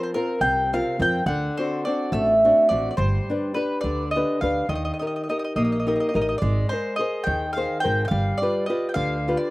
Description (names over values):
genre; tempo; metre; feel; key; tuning
italian folk, Italian serenade; 70 BPM (dotted quarters); 6/8; rubato; unclear; A4 = 440 Hz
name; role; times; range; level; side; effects
mandolin; melody; 0.0-9.5 s; Bb4 to G5; -24 LUFS; right 1 dB; slapback echo
nylon-string guitar; accompaniment; 0.0-9.5 s; C3 to C5; -25 LUFS; left 1 dB; slapback echo
upright bass; bass; 0.4-9.3 s; G1 to F2; -26 LUFS; right 1 dB; none
room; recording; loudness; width
little or no reverb; recorded outdoors, with no room sound; -20 LUFS; side -20 dB against mid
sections
0.0-9.5 A section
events
none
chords
0.0 Fsus4; 1.3 D7; 3.0 G; 4.7 Eb; 6.4 Abadd9; 8.1 G7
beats
0.42 | 1.27 2.12 | 2.97 3.83 | 4.70 5.57 | 6.42 7.27 | 8.11 8.96